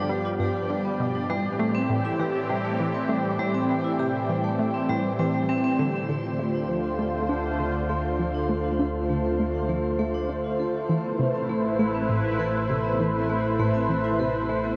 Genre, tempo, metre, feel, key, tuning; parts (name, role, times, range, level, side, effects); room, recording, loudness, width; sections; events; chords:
ambient, sequencer-driven space music; 100 BPM; 4/4; straight; A minor; A4 = 440 Hz
sweeping resonant pad; sustained chords; 0.0-14.8 s; G2 to C5; -28 LUFS; equal; chorus
vibraphone with medium hard mallets; arpeggios; 0.0-14.8 s; G3 to A4; -33 LUFS; equal; tape echo
bubbling stepped-filter texture; texture; 0.0-6.1 s; D5; -41 LUFS; equal; chorus, built-in reverb
analog pluck; riff; 0.1-14.6 s; G2 to D4; -32 LUFS; equal; chorus, vintage 12-bit sampler grit, tape echo
analog drone; bass; 6.6-14.8 s; A1 to D2; -34 LUFS; equal; chorus, transformer saturation
wet shimmer reverb, RT60 8.6 s; worn, warbling old tape, cassette tape, warbly pitch drift; -26 LUFS; mono
0.0-6.1 A section; 6.1-14.8 B section
filter sweep on synth arpeggio sound 0.0-6.1, 6.1-14.8; fade-in on vibraphone 6.1-14.8
0.0 G7; 1.3 Am7; 6.1 Dm7; 10.9 Amadd9